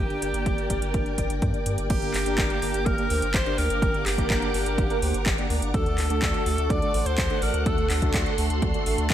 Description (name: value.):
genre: italo disco.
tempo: 125 BPM.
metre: 4/4.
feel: straight.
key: G harmonic minor.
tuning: A4 = 441 Hz.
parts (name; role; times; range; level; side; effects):
edgy alto saxophone; melody; 0.0-8.1 s; G4 to D5; -30 LUFS; equal; digital delay.
string machine, full ensemble; sustained chords; 0.0-9.1 s; A4 to D6; -31 LUFS; equal; ensemble chorus.
mellow synth brass; stabs; 0.0-9.1 s; A3 to D5; -30 LUFS; right 2 dB; chorus.
round analog bass; bass; 0.0-9.1 s; G1 to G2; -28 LUFS; equal; none.
house drum kit; drums; 0.1-9.1 s; crash cymbal, handclaps, hi-hat; -30 LUFS; equal; overdrive, gated reverb.
electronic kick drum; drums; 0.5-9.1 s; none; -27 LUFS; equal; overdrive.
room: digital ambience.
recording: none.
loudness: -22 LUFS.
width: side -11 dB against mid.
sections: 0.0-1.9 A section; 1.9-9.1 B section.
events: none.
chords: 0.0 Gm; 5.7 D.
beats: 0.46 0.94 1.42 | 1.90 2.38 2.86 3.34 | 3.82 4.30 4.78 5.26 | 5.74 6.22 6.70 7.18 | 7.66 8.14 8.62 9.10.